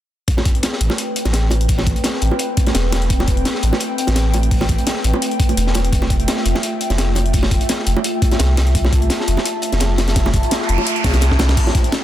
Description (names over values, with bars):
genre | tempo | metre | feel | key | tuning
liquid drum and bass | 170 BPM | 4/4 | swing 54% on 16ths | A minor | A4 = 441 Hz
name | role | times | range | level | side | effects
airy breathy pad | sustained chords | 0.5-12.0 s | A3 to A5 | -23 LUFS | equal | chorus, sidechain pumping
breakbeat sampler-style drum kit | drums | 0.3-12.0 s | crash cymbal, hi-hat, snare drum | -25 LUFS | left 3 dB | small room ambience
crunchy breakbeat drum kit | drums | 0.3-12.0 s | hi-hat, snare drum | -24 LUFS | left 1 dB | high-pass filter on hats, small room ambience, high-pass filter on snare, high-pass filter on room
electronic kick drum | drums | 0.3-11.8 s | none | -18 LUFS | equal | small room ambience
bongos | percussion | 0.4-12.0 s | none | -26 LUFS | right 2 dB | none
warm sub bass | bass | 0.8-11.6 s | E1 to C2 | -17 LUFS | equal | tube saturation
noise sweep | sound effects | 10.4-11.6 s | none | -24 LUFS | right 2 dB | none
room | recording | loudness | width
light reverb, small room ambience | dense, heavily limited modern master | -15 LUFS | side -12 dB against mid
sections
0.3-12.0 A section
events
noise sweep 10.4-11.6; drum fill 11.3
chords
0.3 Am9; 5.9 Fmaj9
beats
| 0.28 0.63 0.98 1.34 | 1.69 2.04 2.40 2.75 | 3.10 3.46 3.81 4.16 | 4.51 4.87 5.22 5.57 | 5.93 6.28 6.63 6.98 | 7.34 7.69 8.04 8.40 | 8.75 9.10 9.46 9.81 | 10.16 10.51 10.87 11.22 | 11.57 11.93